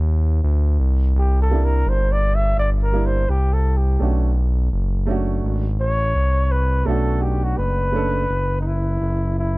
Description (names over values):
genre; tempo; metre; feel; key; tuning
hip hop, jazz-hop; 84 BPM; 4/4; swing 62% on 16ths; unclear; A4 = 442 Hz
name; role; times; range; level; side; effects
smooth synth bass; bass; 0.0-9.6 s; F#1 to D#2; -18 LUFS; equal; none
breathy flugelhorn; melody; 1.2-9.6 s; D#4 to E5; -24 LUFS; equal; none
dark upright piano; accompaniment; 1.5-8.2 s; G3 to A4; -26 LUFS; right 5 dB; none
room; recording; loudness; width
little or no reverb; dark, warm production; -17 LUFS; side -22 dB against mid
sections
0.0-9.6 A section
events
flugelhorn solo 0.0-9.6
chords
0.0 G# (rootless); 1.2 C9; 4.0 Bm7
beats
0.44 | 1.16 1.87 2.58 3.30 | 4.01 4.73 5.44 6.16 | 6.87 7.58 8.30 9.01